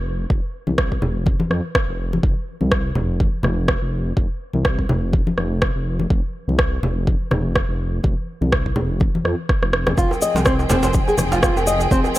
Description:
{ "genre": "afro house", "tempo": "124 BPM", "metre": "4/4", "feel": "swing 56% on 16ths", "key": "F minor", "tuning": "A4 = 440 Hz", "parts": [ { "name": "dark detuned saw bass", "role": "bass", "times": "0.0-12.0 s", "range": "F1 to F2", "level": "-22 LUFS", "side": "equal", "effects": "sidechain pumping" }, { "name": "electronic kick drum", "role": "drums", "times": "0.3-12.0 s", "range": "none", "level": "-20 LUFS", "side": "equal", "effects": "none" }, { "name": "congas", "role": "percussion", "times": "0.7-11.3 s", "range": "none", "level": "-24 LUFS", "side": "left 1 dB", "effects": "none" }, { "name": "electronic rim click", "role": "drums", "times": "0.8-11.5 s", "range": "none", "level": "-24 LUFS", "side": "equal", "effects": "none" }, { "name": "muted studio string section", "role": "sustained chords", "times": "10.0-12.2 s", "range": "F3 to G5", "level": "-25 LUFS", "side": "equal", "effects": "sidechain pumping" }, { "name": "flamenco guitar", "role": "arpeggios", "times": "10.0-12.2 s", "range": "C4 to Eb5", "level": "-20 LUFS", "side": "left 1 dB", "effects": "sidechain pumping, digital delay" }, { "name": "tube shaker", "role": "percussion", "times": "10.0-12.2 s", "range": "none", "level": "-29 LUFS", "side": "left 2 dB", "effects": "none" }, { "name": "djembe", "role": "percussion", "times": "10.1-12.1 s", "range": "none", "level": "-26 LUFS", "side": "right 2 dB", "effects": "none" } ], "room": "light reverb, small room reverb", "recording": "none", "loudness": "-17 LUFS", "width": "side -16 dB against mid", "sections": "0.0-12.2 A section", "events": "drum fill 9.5-10.0", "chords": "0.0 F5; 10.0 Fm" }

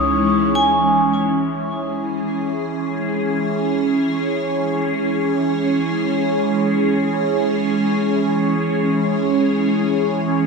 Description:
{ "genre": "ambient", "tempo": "free time", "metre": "none", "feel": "none", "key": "C# minor", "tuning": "A4 = 439 Hz", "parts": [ { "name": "warm velvety synth lead", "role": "melody", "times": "0.0-0.6 s", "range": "C#5", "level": "-35 LUFS", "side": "left 4 dB", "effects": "none" }, { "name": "evolving wavetable pad", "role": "sustained chords", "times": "0.0-10.5 s", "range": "E3 to C#5", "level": "-17 LUFS", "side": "right 1 dB", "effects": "ensemble chorus, built-in reverb, phaser" }, { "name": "vibraphone with hard mallets", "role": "arpeggios", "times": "0.0-1.5 s", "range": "D#4 to D#6", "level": "-20 LUFS", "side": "equal", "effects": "dub echo" }, { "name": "deep rumbling drone", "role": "bass", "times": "0.0-1.3 s", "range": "C#2", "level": "-33 LUFS", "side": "left 1 dB", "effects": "built-in reverb" } ], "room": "wet spring reverb, RT60 2.5 s", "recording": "echo-heavy mix", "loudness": "-17 LUFS", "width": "side -4 dB against mid", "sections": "0.0-1.4 A section; 1.4-10.5 B section", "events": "none", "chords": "0.0 C#m" }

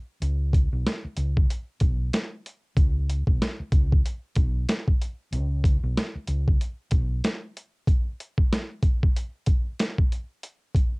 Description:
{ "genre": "hip hop, boom-bap hip-hop", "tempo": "94 BPM", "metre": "4/4", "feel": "swing 60% on 16ths", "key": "unclear", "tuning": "A4 = 440 Hz", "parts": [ { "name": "hollow-body short-scale fingered electric bass", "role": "bass", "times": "0.2-7.2 s", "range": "B1 to C#2", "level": "-26 LUFS", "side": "equal", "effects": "none" }, { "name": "boom bap sampler-style drum kit", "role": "drums", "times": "0.2-10.9 s", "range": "hi-hat, kick drum, snare drum", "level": "-22 LUFS", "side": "equal", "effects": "none" } ], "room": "little or no reverb", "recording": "home recording on cassette", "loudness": "-23 LUFS", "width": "side -35 dB against mid", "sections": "0.0-11.0 A section", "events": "none", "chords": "none" }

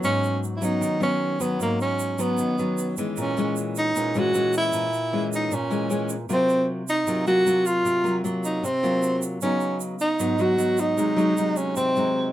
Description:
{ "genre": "bossa nova", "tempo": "154 BPM", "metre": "4/4", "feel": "straight", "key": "unclear", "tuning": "A4 = 439 Hz", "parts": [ { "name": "breathy tenor saxophone", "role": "melody", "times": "0.0-12.3 s", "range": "A#3 to F#4", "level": "-23 LUFS", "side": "right 1 dB", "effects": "none" }, { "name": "nylon-string guitar", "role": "accompaniment", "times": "0.0-12.3 s", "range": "G#2 to E#4", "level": "-25 LUFS", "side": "left 1 dB", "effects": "none" }, { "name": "egg shaker", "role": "percussion", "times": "0.0-12.2 s", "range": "none", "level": "-37 LUFS", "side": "right 7 dB", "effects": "none" } ], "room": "moderate small room reverb, RT60 0.5 s", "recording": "band playing live in one room", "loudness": "-21 LUFS", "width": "side -13 dB against mid", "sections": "0.0-3.2 A section; 3.2-12.3 B section", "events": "none", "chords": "0.0 G#m7; 3.2 A#m7b5; 6.3 D#m69/B# (rootless); 9.4 C#9sus4; 11.0 G#7/B#" }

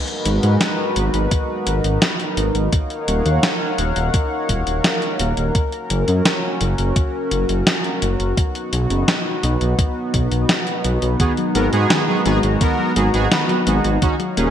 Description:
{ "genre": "synthwave", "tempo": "85 BPM", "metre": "4/4", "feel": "straight", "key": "unclear", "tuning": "A4 = 436 Hz", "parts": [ { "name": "chorused pulse-width pad", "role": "sustained chords", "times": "0.0-14.5 s", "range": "G#3 to A#5", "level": "-22 LUFS", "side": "equal", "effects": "vintage 12-bit sampler grit, sidechain pumping" }, { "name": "clean 12-bit digital drum machine", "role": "drums", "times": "0.1-14.5 s", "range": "hi-hat, snare drum", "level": "-21 LUFS", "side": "equal", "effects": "gated reverb" }, { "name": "dark detuned saw bass", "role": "bass", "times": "0.3-14.5 s", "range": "D#1 to G#2", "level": "-19 LUFS", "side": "equal", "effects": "none" }, { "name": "electronic kick drum", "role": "drums", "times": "1.3-14.2 s", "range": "none", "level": "-19 LUFS", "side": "equal", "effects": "none" }, { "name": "thumb-piano-like synth pluck", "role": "arpeggios", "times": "11.2-14.5 s", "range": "D#3 to A#3", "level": "-24 LUFS", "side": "left 2 dB", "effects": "chorus, digital delay" }, { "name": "analog synth brass", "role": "stabs", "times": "11.2-14.5 s", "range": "B3 to B4", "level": "-21 LUFS", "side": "right 3 dB", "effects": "chorus, cassette tape, digital delay" } ], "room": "moderate lush hall reverb, RT60 1.8 s", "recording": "bright 1980s-style digital production", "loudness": "-16 LUFS", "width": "side -9 dB against mid", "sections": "0.0-14.5 A section", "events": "none", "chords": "0.0 G#m7; 2.7 D#m7; 5.5 F#; 8.4 B; 11.2 G#m7" }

